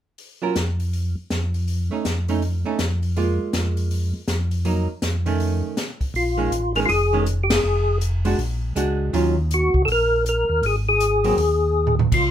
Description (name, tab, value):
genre	soul jazz organ trio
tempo	161 BPM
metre	4/4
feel	swing 63% on 8ths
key	Bb minor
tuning	A4 = 440 Hz
part	open jazz drum kit	drums	0.2-12.2 s	crash cymbal, hi-hat, kick drum, ride cymbal, snare drum, toms	-27 LUFS	right 1 dB	none
part	archtop guitar, miked and amplified	accompaniment	0.4-11.4 s	Eb3 to Bb4	-24 LUFS	right 4 dB	none
part	mellow tonewheel organ	bass	0.6-12.3 s	F1 to F2	-22 LUFS	equal	slow rotary speaker
part	percussive tonewheel organ	melody	6.2-12.3 s	F4 to Bb4	-19 LUFS	left 2 dB	slow rotary speaker, chorus vibrato
room	moderate studio reverb, RT60 0.5 s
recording	minimal, uncompressed stereo recording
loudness	-19 LUFS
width	side -10 dB against mid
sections	0.2-6.2 A section; 6.2-12.3 B section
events	break 5.8-6.2; band accent 7.5; drum fill 11.7-12.1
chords	0.2 N.C.; 1.7 Faug7; 3.2 Fmadd11; 4.7 F7b9b13; 5.4 A; 6.2 Bbm7; 7.6 Fm6; 8.4 Bb7alt; 9.1 Ebm9; 10.6 Ab5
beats	| 0.18 0.56 0.93 1.30 | 1.68 2.05 2.42 2.79 | 3.17 3.54 3.91 4.29 | 4.66 5.03 5.41 5.78 | 6.15 6.52 6.90 7.27 | 7.64 8.02 8.39 8.76 | 9.13 9.51 9.88 10.25 | 10.63 11.00 11.37 11.74 | 12.12